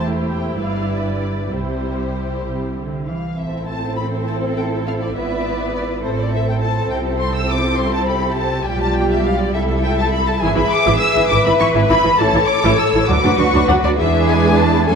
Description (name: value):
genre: quick classical-period movement for string orchestra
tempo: 67 BPM (dotted quarters)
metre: 6/8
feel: rubato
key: C major, A minor from 3.4 s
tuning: A4 = 440 Hz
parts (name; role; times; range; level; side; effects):
- muted studio violin section; melody; 0.0-15.0 s; C5 to E6; -21 LUFS; left 2 dB; none
- muted studio violin section; second line; 0.0-15.0 s; E4 to E5; -22 LUFS; left 4 dB; none
- muted studio viola section; accompaniment; 0.0-15.0 s; E3 to F4; -21 LUFS; right 2 dB; none
- muted studio cello section; bass; 0.0-15.0 s; E2 to B4; -24 LUFS; right 2 dB; none
- muted studio double bass section; bass; 0.0-15.0 s; E1 to F#2; -21 LUFS; right 2 dB; none
room: moderate scoring stage reverb, RT60 1.9 s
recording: none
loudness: -15 LUFS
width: side -6 dB against mid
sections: 0.0-3.4 A section; 3.4-15.0 B section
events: none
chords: 0.0 C/E; 0.6 G; 1.5 C; 3.4 Am; 5.2 E7/G#; 6.0 Am; 6.9 C; 8.7 G7/B; 9.5 C; 10.4 E/G#; 12.2 A; 13.1 Bm/D; 14.0 E7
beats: 0.59 | 1.51 2.45 | 3.38 4.28 | 5.16 6.05 | 6.93 7.81 | 8.67 9.54 | 10.42 11.31 | 12.20 13.09 | 13.98 14.88